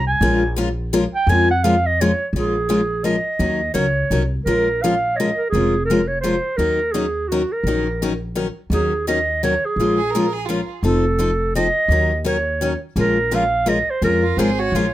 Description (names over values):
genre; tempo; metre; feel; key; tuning
acoustic string swing (jazz manouche); 169 BPM; 3/4; swing 60% on 8ths; Bb minor; A4 = 440 Hz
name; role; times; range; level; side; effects
breathy clarinet; melody; 0.0-14.9 s; Gb4 to Ab5; -20 LUFS; right 2 dB; none
upright bass; bass; 0.0-14.9 s; F1 to F2; -22 LUFS; equal; none
picked steel-string acoustic guitar; accompaniment; 0.2-14.9 s; Eb3 to Bb4; -20 LUFS; left 3 dB; none
warm violin; second line; 10.0-10.7, 14.2-14.9 s; F4 to Bb4; -26 LUFS; right 5 dB; tape echo
room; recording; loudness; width
light reverb; none; -17 LUFS; side -14 dB against mid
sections
0.0-2.3 A section; 2.3-14.9 B section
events
clarinet solo 0.0-2.3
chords
0.2 Bbm7; 3.4 Ebm7; 4.5 Bbm7; 6.6 Ebm7; 9.8 Bbm7; 10.8 F7; 11.9 Ebm7; 13.0 Bbm7